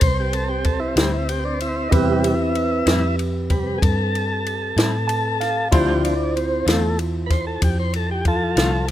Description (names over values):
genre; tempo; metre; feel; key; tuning
slow blues; 63 BPM (dotted quarters); 12/8; straight; A minor; A4 = 440 Hz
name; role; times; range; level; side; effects
barky tine electric piano; accompaniment; 0.0-8.9 s; C4 to A5; -25 LUFS; right 2 dB; overdrive, analog chorus
tonewheel organ; sustained chords; 0.0-8.9 s; C3 to C5; -23 LUFS; equal; slow rotary speaker
vintage muted fingered electric bass; bass; 0.0-8.9 s; C2 to A2; -24 LUFS; equal; none
compact cocktail drum kit; drums; 0.0-8.9 s; kick drum, ride cymbal, snare drum; -21 LUFS; equal; none
clean electric guitar; accompaniment; 1.0-8.8 s; A2 to F4; -27 LUFS; left 5 dB; tremolo
room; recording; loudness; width
studio ambience; rough home demo mix; -18 LUFS; side -12 dB against mid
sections
0.0-8.9 A section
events
tonewheel organ solo 0.0-8.9; tine electric piano fill 4.8-5.7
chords
0.0 Am7; 5.7 Dm7